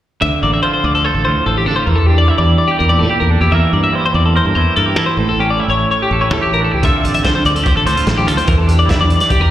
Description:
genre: math rock and midwest emo.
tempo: 145 BPM.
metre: 4/4.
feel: straight.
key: D minor.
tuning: A4 = 440 Hz.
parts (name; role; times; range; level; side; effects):
twangy electric guitar; accompaniment; 0.2-9.5 s; A2 to C5; -18 LUFS; right 5 dB; slapback echo.
twelve-string electric guitar; arpeggios; 0.2-9.5 s; G4 to E5; -16 LUFS; left 4 dB; spring reverb, slapback echo.
modern bright fingered electric bass; bass; 0.2-9.5 s; A1 to E3; -15 LUFS; equal; none.
loose indie drum kit; drums; 6.8-9.4 s; hi-hat, kick drum, snare drum; -16 LUFS; equal; none.
room: studio ambience.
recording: live gig heard through the venue's PA, recital hall reverb.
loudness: -11 LUFS.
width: side -12 dB against mid.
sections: 0.2-9.5 A section.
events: none.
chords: 0.2 Dm7; 1.9 Em7b5; 3.5 C7; 5.2 A7; 6.8 Dm7; 8.5 Em7b5.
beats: | 0.22 0.63 1.05 1.46 | 1.87 2.29 2.70 3.11 | 3.52 3.94 4.35 4.76 | 5.17 5.59 6.00 6.41 | 6.83 7.24 7.65 8.06 | 8.47 8.89 9.30.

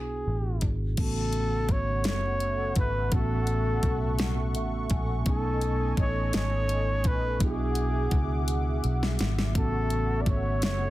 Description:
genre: slow six-eight R&B.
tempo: 56 BPM (dotted quarters).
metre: 6/8.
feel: straight.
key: A major.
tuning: A4 = 441 Hz.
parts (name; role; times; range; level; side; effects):
breathy flugelhorn; melody; 0.0-10.9 s; G#4 to D5; -32 LUFS; left 1 dB; slapback echo.
mellow tine electric piano; accompaniment; 0.0-10.9 s; A2 to G#5; -33 LUFS; right 4 dB; none.
vintage muted fingered electric bass; bass; 0.0-10.9 s; F#1 to C#2; -28 LUFS; equal; none.
smooth R&B drum kit; drums; 0.6-10.8 s; crash cymbal, hi-hat, kick drum, snare drum; -28 LUFS; equal; none.
warm analog pad; sustained chords; 1.0-10.9 s; G#4 to D6; -37 LUFS; left 1 dB; chorus.
room: little or no reverb.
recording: dense, heavily limited modern master.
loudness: -25 LUFS.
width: side -16 dB against mid.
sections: 1.0-10.9 A section.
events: tine electric piano fill 4.2-5.3; drum fill 8.5-9.5.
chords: 0.0 E9; 1.0 A6; 5.3 B13; 7.4 E9/B; 9.5 A6.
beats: | 0.97 2.05 | 3.12 4.19 | 5.26 6.33 | 7.40 8.47 | 9.55 10.62.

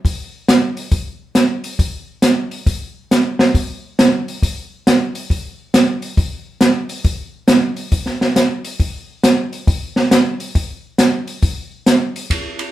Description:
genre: jazz.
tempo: 137 BPM.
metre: 4/4.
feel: swing 65% on 8ths.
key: none.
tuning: none.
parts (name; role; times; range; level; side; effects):
open jazz drum kit; drums; 0.0-12.7 s; hi-hat, kick drum, ride cymbal, snare drum; -14 LUFS; equal; none.
room: wet studio reverb, RT60 0.6 s.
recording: heard from further back in the room.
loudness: -15 LUFS.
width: side -14 dB against mid.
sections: 0.0-12.3 A section.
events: none.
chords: none.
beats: | 0.04 0.48 0.92 1.36 | 1.79 2.23 2.67 3.11 | 3.54 3.98 4.42 4.86 | 5.29 5.73 6.17 6.61 | 7.04 7.48 7.92 8.36 | 8.79 9.23 9.67 10.11 | 10.55 10.98 11.42 11.86 | 12.30.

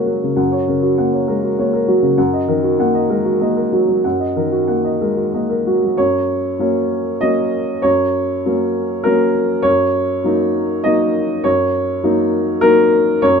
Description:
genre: neoclassical minimalist piano.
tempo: 91-102 BPM.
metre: 3/4.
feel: rubato.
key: F# major.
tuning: A4 = 440 Hz.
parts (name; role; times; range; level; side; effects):
warm upright piano; solo; 0.0-13.4 s; F#2 to F#5; -14 LUFS; equal; none.
room: light reverb.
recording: minimal, uncompressed stereo recording.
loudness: -14 LUFS.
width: side -6 dB against mid.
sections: 0.0-6.0 A section; 6.0-13.4 B section.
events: none.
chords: 0.0 F#; 2.2 D#m/F#; 6.0 F#.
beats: | 0.38 0.98 1.58 | 2.17 2.77 3.39 | 4.04 4.69 5.34 | 5.98 6.60 7.23 | 7.85 8.45 9.06 | 9.65 10.25 10.86 | 11.45 12.04 12.63 | 13.23.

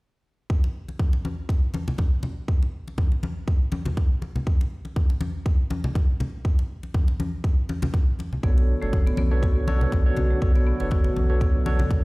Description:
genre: afro house.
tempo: 121 BPM.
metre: 4/4.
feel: swing 55% on 16ths.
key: B minor.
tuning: A4 = 441 Hz.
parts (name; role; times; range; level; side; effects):
electronic kick drum; drums; 0.5-12.0 s; none; -21 LUFS; equal; none.
congas; percussion; 0.6-12.0 s; none; -30 LUFS; left 1 dB; none.
warm analog pad; sustained chords; 8.4-12.0 s; D3 to F#4; -33 LUFS; equal; chorus, sidechain pumping.
marimba with soft mallets; arpeggios; 8.4-11.9 s; A3 to B4; -32 LUFS; equal; sidechain pumping, digital delay.
bright tine electric piano; stabs; 8.4-12.0 s; D4 to C#5; -30 LUFS; right 1 dB; medium stereo tremolo, sidechain pumping, digital delay.
warm sub bass; bass; 8.4-12.0 s; F#1 to B1; -23 LUFS; equal; sidechain pumping.
room: small room ambience.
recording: played on a big sound system in a bare room, stone room reverb.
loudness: -21 LUFS.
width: side -24 dB against mid.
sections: 0.5-12.0 A section.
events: none.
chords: 0.5 Bm7.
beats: | 0.50 1.00 1.49 1.99 | 2.48 2.98 3.48 3.97 | 4.47 4.96 5.46 5.96 | 6.45 6.95 7.44 7.94 | 8.44 8.93 9.43 9.92 | 10.42 10.91 11.41 11.91.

